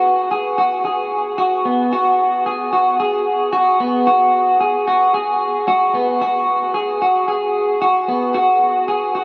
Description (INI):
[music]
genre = dream pop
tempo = 112 BPM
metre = 4/4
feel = straight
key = unclear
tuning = A4 = 440 Hz
[part]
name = electric guitar through a small old amp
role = solo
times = 0.0-9.2 s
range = B3 to G#4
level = -17 LUFS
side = equal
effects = lush chorus, analog delay
[sound]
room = wet huge ambient reverb, RT60 9.7 s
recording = dreamy mix soaked in reverb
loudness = -17 LUFS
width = mono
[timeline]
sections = 0.0-9.2 A section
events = none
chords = none